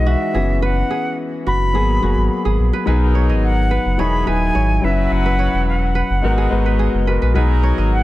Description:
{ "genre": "afrobeats", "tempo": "107 BPM", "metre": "4/4", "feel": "straight", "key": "B major", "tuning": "A4 = 440 Hz", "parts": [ { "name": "silver concert flute", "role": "melody", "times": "0.0-8.0 s", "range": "E5 to B5", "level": "-23 LUFS", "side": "equal", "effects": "tape echo" }, { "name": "warm concert grand piano", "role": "accompaniment", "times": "0.0-8.0 s", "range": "E3 to B4", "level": "-21 LUFS", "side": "left 3 dB", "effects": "none" }, { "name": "kora", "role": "riff", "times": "0.0-8.0 s", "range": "F#4 to D#5", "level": "-26 LUFS", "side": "right 6 dB", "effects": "none" }, { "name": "sub bass with octave", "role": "bass", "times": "0.0-8.0 s", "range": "D#1 to B1", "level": "-17 LUFS", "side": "equal", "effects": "none" }, { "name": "warm horn section", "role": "second line", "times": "2.9-8.0 s", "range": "D#3 to B4", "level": "-28 LUFS", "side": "equal", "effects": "none" } ], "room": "little or no reverb", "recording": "none", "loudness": "-15 LUFS", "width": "side -16 dB against mid", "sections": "0.0-2.9 A section; 2.9-8.0 B section", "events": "none", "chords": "0.3 F#7sus4; 1.7 G#m9; 2.9 B6; 4.0 Emaj9; 4.8 F#7sus4; 6.2 G#m9; 7.4 B6", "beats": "0.07 | 0.62 1.19 1.75 2.31 | 2.87 3.43 3.99 4.55 | 5.11 5.67 6.23 6.79 | 7.35 7.92" }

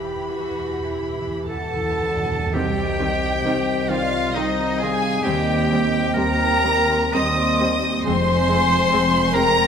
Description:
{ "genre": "classical, slow romantic movement for symphony orchestra", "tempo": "48-71 BPM", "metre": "3/4", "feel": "rubato", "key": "C minor", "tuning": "A4 = 440 Hz", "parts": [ { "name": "rich chamber violin section", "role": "melody", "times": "0.0-9.7 s", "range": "Eb5 to Eb6", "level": "-24 LUFS", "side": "left 1 dB", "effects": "none" }, { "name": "clear clarinet", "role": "second line", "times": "0.0-9.7 s", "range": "Eb4 to Eb5", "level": "-29 LUFS", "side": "left 1 dB", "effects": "none" }, { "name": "warm chamber violin section", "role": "second line", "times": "0.0-9.7 s", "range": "D4 to Eb5", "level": "-28 LUFS", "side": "left 3 dB", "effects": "none" }, { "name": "warm symphonic viola section", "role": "accompaniment", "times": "0.0-9.4 s", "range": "Eb3 to C4", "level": "-30 LUFS", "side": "right 2 dB", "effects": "none" }, { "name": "concert harp", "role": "arpeggios", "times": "0.0-9.7 s", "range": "C3 to C6", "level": "-30 LUFS", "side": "left 5 dB", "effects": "none" }, { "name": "dark chamber cello section", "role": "bass", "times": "0.0-9.7 s", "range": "C2 to F2", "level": "-28 LUFS", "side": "right 2 dB", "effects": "none" }, { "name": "warm chamber double bass section", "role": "bass", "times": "0.0-9.7 s", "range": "F1 to Eb2", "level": "-26 LUFS", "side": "right 4 dB", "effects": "none" }, { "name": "timpani", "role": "percussion", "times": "0.0-2.5 s", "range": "E2", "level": "-30 LUFS", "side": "right 2 dB", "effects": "none" }, { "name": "clear oboe", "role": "second line", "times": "1.5-9.7 s", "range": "Eb4 to Eb5", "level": "-26 LUFS", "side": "right 1 dB", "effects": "none" }, { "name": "mellow hollow large flute ensemble", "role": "second line", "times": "1.5-9.7 s", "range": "C5 to C6", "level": "-28 LUFS", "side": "equal", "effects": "none" }, { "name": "mellow French horn section", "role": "sustained chords", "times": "2.5-9.6 s", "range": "Eb3 to C4", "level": "-28 LUFS", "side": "left 3 dB", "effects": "none" } ], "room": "moderate scoring stage reverb, RT60 1.9 s", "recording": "minimal, uncompressed stereo recording", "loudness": "-18 LUFS", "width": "side -7 dB against mid", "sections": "0.0-2.5 A section; 2.5-9.7 B section", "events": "timpani fill 0.0-2.5", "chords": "0.0 Em; 2.5 Cm; 5.3 Cm/Eb; 8.1 Fm", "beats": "0.30 1.49 | 2.54 3.45 4.35 | 5.26 6.16 7.14 | 8.05 8.91" }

